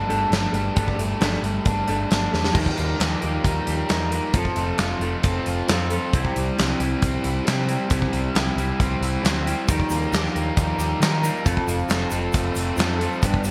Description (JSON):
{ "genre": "indie rock", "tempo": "135 BPM", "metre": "4/4", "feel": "straight", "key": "unclear", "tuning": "A4 = 441 Hz", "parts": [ { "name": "electric guitar through a small old amp", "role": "riff", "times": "0.0-13.5 s", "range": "G2 to Bb4", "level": "-30 LUFS", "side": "equal", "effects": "none" }, { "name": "raw garage guitar", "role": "riff", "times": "0.0-13.5 s", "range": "F2 to G4", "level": "-29 LUFS", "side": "equal", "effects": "overdrive, subtle chorus, digital delay" }, { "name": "picked electric bass", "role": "bass", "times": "0.0-13.5 s", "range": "F1 to Eb3", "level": "-29 LUFS", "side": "equal", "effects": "none" }, { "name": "big rock drum kit", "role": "drums", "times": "0.1-13.5 s", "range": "crash cymbal, hi-hat, kick drum, snare drum", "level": "-27 LUFS", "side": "equal", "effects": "gated reverb" }, { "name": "egg shaker", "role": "percussion", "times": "9.7-13.5 s", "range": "none", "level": "-42 LUFS", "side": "equal", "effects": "none" } ], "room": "light reverb", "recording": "bright 1980s-style digital production", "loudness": "-22 LUFS", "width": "mono", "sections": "0.0-2.6 A section; 2.6-13.5 B section", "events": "drum fill 2.3", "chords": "0.0 Gsus2; 2.6 Ebadd9; 4.3 F; 6.1 C; 9.7 Ebadd9; 11.5 F", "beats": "0.32 | 0.77 1.21 1.66 2.11 | 2.55 3.00 3.45 3.89 | 4.34 4.79 5.23 5.68 | 6.12 6.57 7.01 7.46 | 7.90 8.35 8.79 9.23 | 9.68 10.12 10.57 11.01 | 11.45 11.90 12.34 12.79 | 13.23" }